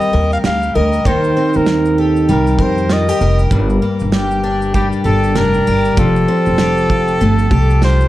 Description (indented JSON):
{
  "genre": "acoustic pop",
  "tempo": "98 BPM",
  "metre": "4/4",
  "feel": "swing 60% on 16ths",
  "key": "unclear",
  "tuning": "A4 = 440 Hz",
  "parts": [
    { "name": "warm trumpet", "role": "melody", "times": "0.0-8.1 s", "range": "G4 to F5", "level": "-18 LUFS", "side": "equal", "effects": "plate reverb" },
    { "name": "picked twelve-string acoustic guitar", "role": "accompaniment", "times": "0.0-8.1 s", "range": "G2 to Bb4", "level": "-16 LUFS", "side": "left 1 dB", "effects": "none" },
    { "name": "loose indie drum kit", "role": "drums", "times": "0.0-8.1 s", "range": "kick drum, shaker, snare drum", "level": "-20 LUFS", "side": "right 1 dB", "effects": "none" },
    { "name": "upright bass", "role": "bass", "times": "0.1-8.0 s", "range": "F1 to F2", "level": "-16 LUFS", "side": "equal", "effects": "none" }
  ],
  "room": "little or no reverb",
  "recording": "dark, warm production",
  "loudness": "-12 LUFS",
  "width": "side -15 dB against mid",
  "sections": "0.0-8.1 A section",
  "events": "none",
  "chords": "0.0 Eb6; 3.5 Gm; 6.0 Fadd9",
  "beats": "0.44 | 1.05 1.67 2.28 2.90 | 3.51 4.13 4.74 5.36 | 5.97 6.59 7.21 7.82"
}